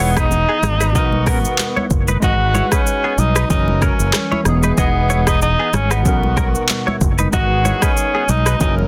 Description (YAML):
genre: afrobeats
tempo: 94 BPM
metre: 4/4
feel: swing 55% on 16ths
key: G# minor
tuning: A4 = 440 Hz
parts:
  - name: warm tenor saxophone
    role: melody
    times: 0.0-8.8 s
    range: B3 to F#4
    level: -22 LUFS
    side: equal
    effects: plate reverb, digital delay
  - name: warm horn section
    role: second line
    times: 0.0-8.9 s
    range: D#3 to B4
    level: -30 LUFS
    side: equal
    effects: plate reverb, digital delay
  - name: glassy digital keys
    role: accompaniment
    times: 0.0-8.9 s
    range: B2 to B4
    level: -28 LUFS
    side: equal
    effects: chorus, plate reverb
  - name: direct-recorded clean electric guitar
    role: riff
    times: 0.0-8.6 s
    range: B3 to D#5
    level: -26 LUFS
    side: equal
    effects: analog chorus, digital delay
  - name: fingered electric bass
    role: bass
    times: 0.0-8.9 s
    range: E1 to B1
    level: -20 LUFS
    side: equal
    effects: none
  - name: afro-pop drum kit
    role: drums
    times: 0.0-8.8 s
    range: handclaps, hi-hat, kick drum, rim click, shaker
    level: -21 LUFS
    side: equal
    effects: overdrive
  - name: congas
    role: percussion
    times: 0.3-8.9 s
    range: none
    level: -28 LUFS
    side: equal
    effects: none
room: light reverb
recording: dense, heavily limited modern master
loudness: -16 LUFS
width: mono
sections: 0.0-8.9 A section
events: none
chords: 0.0 Emaj7; 0.9 Bmaj7; 2.2 G#m7; 3.5 F#7; 4.5 Emaj7; 6.1 Bmaj7; 7.3 G#m7